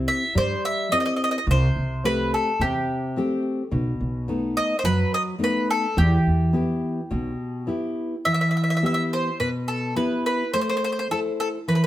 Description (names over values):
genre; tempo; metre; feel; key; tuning
italian folk, Italian serenade; 106 BPM; 4/4; straight; E harmonic minor; A4 = 440 Hz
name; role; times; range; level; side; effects
nylon-string guitar; accompaniment; 0.0-11.9 s; B2 to C5; -24 LUFS; left 1 dB; none
upright bass; bass; 0.0-7.3 s; B1 to G2; -24 LUFS; equal; none
mandolin; melody; 0.1-11.9 s; G4 to E5; -24 LUFS; equal; none
room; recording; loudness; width
moderate stone room reverb, RT60 1.0 s; band playing live in one room; -21 LUFS; side -13 dB against mid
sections
0.0-8.3 A section; 8.3-11.9 B section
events
none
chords
0.0 C; 1.5 Am7/C; 3.7 B7; 6.0 Em; 10.5 Am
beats
0.34 0.91 | 1.47 2.04 2.60 3.16 | 3.73 4.29 4.85 5.42 | 5.98 6.55 7.12 7.69 | 8.27 8.84 9.40 9.97 | 10.54 11.11 11.68